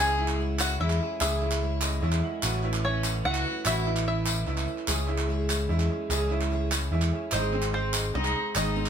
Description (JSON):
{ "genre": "indie folk with a building arrangement", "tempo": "147 BPM", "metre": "3/4", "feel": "straight", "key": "C# minor", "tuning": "A4 = 440 Hz", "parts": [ { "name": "bluegrass banjo", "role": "melody", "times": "0.0-4.6, 7.3-8.9 s", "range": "B#4 to G#5", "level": "-31 LUFS", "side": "left 1 dB", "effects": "none" }, { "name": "warm fiddle", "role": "second line", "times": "0.0-4.6, 7.3-8.9 s", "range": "B#3 to G#4", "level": "-34 LUFS", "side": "left 3 dB", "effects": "none" }, { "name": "clear upright piano", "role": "accompaniment", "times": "0.0-8.9 s", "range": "G#1 to F#5", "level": "-38 LUFS", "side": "equal", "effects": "none" }, { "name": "picked twelve-string acoustic guitar", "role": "accompaniment", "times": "0.0-8.9 s", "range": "G#2 to B4", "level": "-35 LUFS", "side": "left 1 dB", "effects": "none" }, { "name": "clear upright piano", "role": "arpeggios", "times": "0.0-8.9 s", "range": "B#3 to G#4", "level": "-34 LUFS", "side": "right 6 dB", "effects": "none" }, { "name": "picked electric bass", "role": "bass", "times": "0.0-8.9 s", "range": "G#1 to E2", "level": "-28 LUFS", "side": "equal", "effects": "none" }, { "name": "group handclap", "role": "percussion", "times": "0.2-8.9 s", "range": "none", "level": "-33 LUFS", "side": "right 3 dB", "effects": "none" }, { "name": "tambourine", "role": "percussion", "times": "0.6-8.8 s", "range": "none", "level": "-35 LUFS", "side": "left 6 dB", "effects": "none" } ], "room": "moderate studio reverb, RT60 0.6 s", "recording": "band playing live in one room", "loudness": "-25 LUFS", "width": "side -8 dB against mid", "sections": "0.0-8.9 A section", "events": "none", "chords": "0.0 C#m; 2.4 Aadd9; 4.9 C#m; 7.3 G#" }